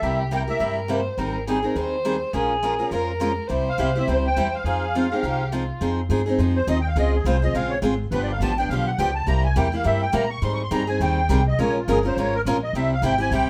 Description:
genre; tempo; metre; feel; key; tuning
acoustic string swing (jazz manouche); 208 BPM; 4/4; swing 57% on 8ths; F minor; A4 = 440 Hz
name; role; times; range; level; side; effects
musette accordion; melody; 0.0-0.8, 3.7-13.5 s; F4 to Db6; -28 LUFS; equal; none
rich violin; second line; 0.0-5.8 s; F4 to C5; -30 LUFS; equal; none
picked steel-string acoustic guitar; accompaniment; 0.0-13.5 s; C3 to Bb4; -27 LUFS; equal; none
upright bass; bass; 0.0-13.5 s; G1 to Bb2; -27 LUFS; equal; none
room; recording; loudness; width
wet studio reverb, RT60 0.6 s; band playing live in one room; -22 LUFS; mono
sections
0.0-5.8 A section; 5.8-13.5 B section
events
accordion solo 5.8-13.5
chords
0.0 C7; 1.2 Abmaj7; 2.3 Bbm7; 3.5 C; 4.7 Fm7; 7.0 Dbmaj7; 8.1 G7; 9.3 C7; 10.4 Abmaj7; 11.6 Bbm7; 12.7 C

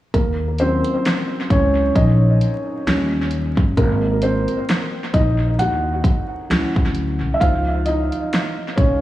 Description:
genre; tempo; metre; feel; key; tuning
lo-fi hip hop; 66 BPM; 4/4; swing 56% on 16ths; Eb dorian; A4 = 440 Hz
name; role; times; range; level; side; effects
felt-muted upright piano; accompaniment; 0.1-9.0 s; F3 to Gb5; -20 LUFS; equal; cassette tape, tape echo
upright bass; bass; 0.1-9.0 s; G1 to Eb2; -20 LUFS; equal; none
pop drum kit; drums; 0.1-9.0 s; hi-hat, kick drum, snare drum; -20 LUFS; equal; tape echo
room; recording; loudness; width
light reverb, studio reverb; echo-heavy mix, vinyl crackle, small room reverb; -16 LUFS; side -14 dB against mid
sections
0.1-9.0 A section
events
felt piano solo 0.1-9.0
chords
0.1 Ebm9; 2.9 Eb9; 3.8 Ab9; 6.5 Dmaj9; 7.4 Dbmaj9

